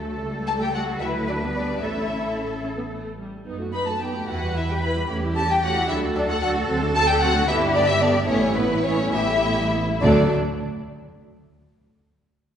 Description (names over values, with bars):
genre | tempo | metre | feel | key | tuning
quick classical-period movement for string orchestra | 66-76 BPM (dotted quarters) | 6/8 | rubato | D major | A4 = 439 Hz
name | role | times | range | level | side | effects
dark studio violin section | melody | 0.0-10.3 s | A4 to B5 | -25 LUFS | left 2 dB | none
warm studio violin section | second line | 0.0-10.3 s | A3 to B4 | -28 LUFS | left 2 dB | none
warm studio viola section | accompaniment | 0.0-10.3 s | D3 to G4 | -26 LUFS | right 1 dB | none
dark studio double bass section | bass | 0.0-10.3 s | G1 to F#2 | -28 LUFS | right 2 dB | none
rich studio cello section | bass | 0.0-10.3 s | D2 to B4 | -28 LUFS | right 2 dB | none
room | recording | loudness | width
wet recital hall reverb, RT60 1.8 s | recorded in a church or concert hall, nothing above 11.0 kHz | -20 LUFS | side -8 dB against mid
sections
0.0-10.0 A section; 10.0-11.7 B section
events
slowing down 5.9-10.0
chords
0.2 A7/C#; 1.0 D; 1.8 A; 3.5 B7/F#; 4.3 Em; 5.1 A7/E; 5.9 D; 6.7 D7; 7.5 G; 8.3 Asus2; 10.0 D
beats
| 0.21 1.01 | 1.82 2.64 | 3.47 4.29 | 5.10 5.89 | 6.69 7.48 | 8.29 9.14 | 10.03